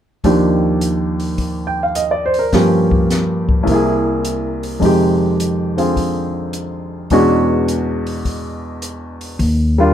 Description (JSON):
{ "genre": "jazz, small-group swing and bop", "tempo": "105 BPM", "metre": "4/4", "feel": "swing 67% on 8ths", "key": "Eb major", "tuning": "A4 = 438 Hz", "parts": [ { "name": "clear baby grand piano", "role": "accompaniment", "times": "0.2-9.9 s", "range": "C2 to G5", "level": "-15 LUFS", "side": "equal", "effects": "none" }, { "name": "open jazz drum kit", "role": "drums", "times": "0.2-9.6 s", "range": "hi-hat, kick drum, snare drum", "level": "-22 LUFS", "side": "left 2 dB", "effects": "none" }, { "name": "upright bass", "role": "bass", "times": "9.4-9.9 s", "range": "Eb2", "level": "-13 LUFS", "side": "equal", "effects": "none" } ], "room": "light reverb", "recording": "dark, warm production", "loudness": "-14 LUFS", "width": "side -10 dB against mid", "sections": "0.2-9.4 A section", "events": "none", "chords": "0.2 Ebmaj9; 2.5 Gm7b5; 3.7 C7b13; 4.8 Fm7; 7.1 E13; 9.4 Ebmaj9" }